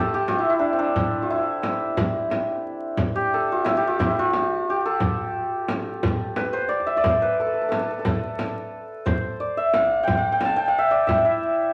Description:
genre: Persian modal ensemble.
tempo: 59 BPM (dotted quarters).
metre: 6/8.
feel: straight.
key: unclear.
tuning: A4 = 441 Hz.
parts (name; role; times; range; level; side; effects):
santur; melody; 0.0-11.7 s; C4 to A5; -24 LUFS; equal; none.
frame drum; percussion; 0.3-11.2 s; none; -30 LUFS; equal; none.
tombak; percussion; 0.3-11.2 s; none; -34 LUFS; equal; none.
room: moderate large studio reverb, RT60 0.9 s.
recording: vinyl crackle, nothing above 10.8 kHz.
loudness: -23 LUFS.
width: mono.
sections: 0.0-11.7 A section.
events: drum fill 6.4-7.0.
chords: none.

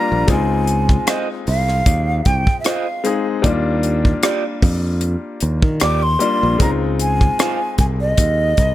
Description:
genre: lush 1970s-style soul.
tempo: 76 BPM.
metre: 4/4.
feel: swing 54% on 16ths.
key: unclear.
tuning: A4 = 439 Hz.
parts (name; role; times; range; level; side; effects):
breathy jazz flute; melody; 0.0-8.7 s; Eb5 to D6; -20 LUFS; right 1 dB; none.
bright grand piano; accompaniment; 0.0-8.7 s; G3 to Ab4; -22 LUFS; left 4 dB; none.
modern bright fingered electric bass; bass; 0.1-8.7 s; Bb1 to Eb3; -19 LUFS; equal; none.
tight funk drum kit; drums; 0.3-8.7 s; hi-hat, kick drum, rim click; -17 LUFS; equal; none.
electric guitar through a small old amp; riff; 1.1-7.6 s; Eb4 to Eb5; -23 LUFS; right 5 dB; harmonic tremolo.
room: small room reverb.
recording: none.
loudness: -15 LUFS.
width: side -14 dB against mid.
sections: 0.0-8.7 A section.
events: none.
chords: 0.3 Dbmaj9; 3.4 Ebmaj9; 6.6 Dbmaj9.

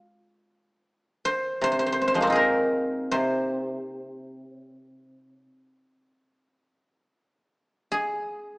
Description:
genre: chinese traditional, Chinese solo plucked strings.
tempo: 71-81 BPM.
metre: 4/4.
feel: rubato.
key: C jue mode.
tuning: A4 = 444 Hz.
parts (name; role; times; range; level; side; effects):
guzheng; solo; 0.0-8.6 s; C3 to C5; -24 LUFS; equal; none.
room: moderate recital hall reverb, RT60 1.6 s.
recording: small speaker sound.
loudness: -23 LUFS.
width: side -32 dB against mid.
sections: 0.0-7.9 A section.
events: none.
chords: none.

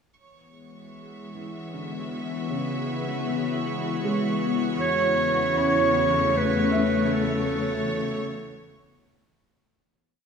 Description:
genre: ambient.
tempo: 78 BPM.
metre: 3/4.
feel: straight.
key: E major.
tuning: A4 = 439 Hz.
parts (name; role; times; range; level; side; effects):
clear studio string section; sustained chords; 0.2-9.4 s; E2 to E5; -29 LUFS; left 2 dB; none.
organ-like drone; drone; 1.3-9.5 s; E3 to B3; -30 LUFS; left 4 dB; ensemble chorus, built-in reverb.
clear studio violin section; texture; 0.2-9.4 s; C#5 to C#6; -36 LUFS; right 3 dB; none.
felt-muted upright piano; arpeggios; 1.4-9.4 s; C#3 to B5; -31 LUFS; right 1 dB; tape echo.
clear clarinet; melody; 4.8-9.0 s; A4 to C#5; -24 LUFS; right 2 dB; tape echo.
room: wet cathedral reverb, RT60 5.4 s.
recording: none.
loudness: -22 LUFS.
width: side -6 dB against mid.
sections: 0.2-9.4 A section.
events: fade-in on string section 0.2-9.4; fade-in on felt piano 0.2-9.4; fade-in on violin section 0.2-9.4; fade-out 6.3-9.4.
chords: 0.2 E9; 4.8 F#m/E.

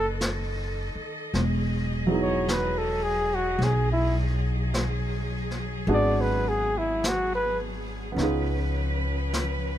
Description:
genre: jazz ballad.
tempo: 53 BPM.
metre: 4/4.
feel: swing 66% on 8ths.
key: E major.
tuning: A4 = 440 Hz.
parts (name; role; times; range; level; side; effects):
mellow flugelhorn; melody; 0.0-7.6 s; E4 to D5; -27 LUFS; equal; none.
dark grand piano; accompaniment; 0.0-9.8 s; F#3 to G#4; -29 LUFS; right 3 dB; none.
clear studio cello section; sustained chords; 0.0-9.8 s; D#3 to D#5; -33 LUFS; left 1 dB; none.
upright bass; bass; 0.0-9.8 s; E1 to C#2; -28 LUFS; equal; none.
jazz brush drum kit; drums; 0.2-9.8 s; brushed snare drum, hi-hat, snare drum; -34 LUFS; equal; none.
room: little or no reverb.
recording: close, detailed microphones.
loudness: -24 LUFS.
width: side -11 dB against mid.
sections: 0.0-9.8 A section.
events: flugelhorn solo 0.0-9.8.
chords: 0.0 B9; 1.3 Emaj9; 5.9 G#m7b5; 8.2 C#7.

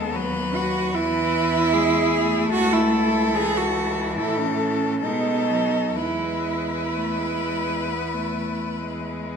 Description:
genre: classical, lyrical piece for cello ensemble.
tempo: 62-76 BPM.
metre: 4/4.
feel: rubato.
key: E major.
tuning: A4 = 440 Hz.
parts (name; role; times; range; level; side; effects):
clear cello; melody; 0.0-9.4 s; G#4 to B4; -27 LUFS; left 8 dB; none.
rich cello; second line; 0.0-9.3 s; B3 to G#4; -24 LUFS; right 5 dB; none.
rich cello; accompaniment; 0.0-9.4 s; E3 to B3; -28 LUFS; left 3 dB; none.
rich cello; bass; 0.0-9.4 s; C#2 to B2; -29 LUFS; right 1 dB; none.
room: wet recital hall reverb, RT60 1.7 s.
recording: minimal, uncompressed stereo recording.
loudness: -20 LUFS.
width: side -6 dB against mid.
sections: 0.0-9.4 A section.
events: none.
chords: 0.0 B/D#; 0.9 E; 2.5 A/C#; 4.2 A; 5.0 B7; 6.0 E.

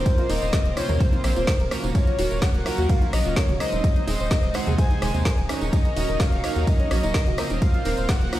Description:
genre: progressive house.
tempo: 127 BPM.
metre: 4/4.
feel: straight.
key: Eb dorian.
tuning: A4 = 440 Hz.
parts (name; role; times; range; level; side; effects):
soft octave-layered synth lead; melody; 0.0-8.4 s; C5 to Ab5; -30 LUFS; left 2 dB; chorus, vintage 12-bit sampler grit, dub echo.
warm chamber violin section; second line; 0.0-8.4 s; C5 to Ab5; -37 LUFS; left 1 dB; sidechain pumping, dub echo.
lush unison pad; sustained chords; 0.0-8.4 s; C3 to Eb4; -33 LUFS; equal; chorus, sidechain pumping.
chorused polysynth; stabs; 0.0-8.4 s; Ab3 to Db5; -30 LUFS; right 4 dB; sidechain pumping, dub echo.
saturated sub bass; bass; 0.0-8.3 s; Eb1 to Eb2; -25 LUFS; equal; sidechain pumping.
soft round pluck; arpeggios; 0.1-8.4 s; C4 to Ab5; -33 LUFS; equal; ensemble chorus, cassette tape, sidechain pumping, dub echo.
deep house drum kit; drums; 0.1-8.4 s; hi-hat, ride cymbal, rim click, snare drum; -32 LUFS; equal; none.
electronic kick drum; drums; 0.1-8.2 s; none; -21 LUFS; equal; none.
tambourine; percussion; 0.1-8.4 s; none; -41 LUFS; right 4 dB; none.
electronic bongos, congas and toms; percussion; 0.2-8.4 s; none; -36 LUFS; right 2 dB; none.
room: little or no reverb.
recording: played on a big sound system in a bare room, large studio reverb.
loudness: -20 LUFS.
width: side -14 dB against mid.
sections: 0.0-8.4 A section.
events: none.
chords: 0.0 Ebm7; 1.9 Gbmaj7/Eb; 3.8 Ab/Eb; 5.7 Ebm7.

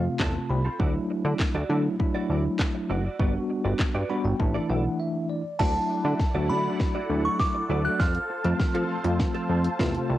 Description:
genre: dance-pop.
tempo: 100 BPM.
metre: 4/4.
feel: straight.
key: D major.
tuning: A4 = 441 Hz.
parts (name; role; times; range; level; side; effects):
bell-like tine electric piano; accompaniment; 0.0-10.2 s; C3 to B5; -28 LUFS; equal; fast stereo tremolo, sidechain pumping, cassette tape.
direct-recorded clean electric guitar; riff; 0.0-10.1 s; C4 to D5; -35 LUFS; right 5 dB; ensemble chorus, cassette tape.
plucky analog bass; bass; 0.0-10.2 s; F#1 to F3; -26 LUFS; equal; sidechain pumping.
house drum kit; drums; 0.2-10.1 s; crash cymbal, handclaps, hi-hat, kick drum, snare drum; -26 LUFS; equal; cassette tape.
glassy synth bell; melody; 5.6-8.9 s; A5 to F#6; -29 LUFS; equal; chorus, analog delay.
filtered supersaw swell; sustained chords; 5.6-10.2 s; E4 to A5; -34 LUFS; right 1 dB; phaser, sidechain pumping, cassette tape.
room: little or no reverb.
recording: home recording on cassette.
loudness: -23 LUFS.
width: side -14 dB against mid.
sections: 0.0-5.6 A section; 5.6-10.2 B section.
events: tine electric piano fill 0.0-0.8, 3.8-5.6; break 5.0-5.6; build-up 5.6-10.2; drum fill 5.6-10.2.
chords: 0.0 F; 0.8 Dadd9; 3.2 Gmaj7; 4.4 Asus4; 5.6 Dadd9; 8.0 F.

